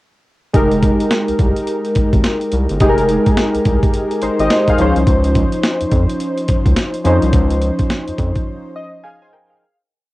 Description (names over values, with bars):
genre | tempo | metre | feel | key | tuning
R&B, new jack swing | 106 BPM | 4/4 | swing 61% on 16ths | F minor | A4 = 441 Hz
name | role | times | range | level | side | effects
warm analog keys | accompaniment | 0.5-9.8 s | F3 to Ab5 | -16 LUFS | equal | chorus
round analog bass | bass | 0.5-8.3 s | F1 to F2 | -18 LUFS | equal | none
breakbeat sampler-style drum kit | drums | 0.5-8.5 s | hi-hat, kick drum, snare drum | -16 LUFS | equal | cassette tape
room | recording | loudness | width
light reverb | home recording on cassette | -13 LUFS | side -18 dB against mid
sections
0.5-9.6 verse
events
fade-out 7.3-9.6; break 8.5-9.6; synth keys fill 8.5-9.6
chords
0.5 Fm11; 4.8 Dbmaj9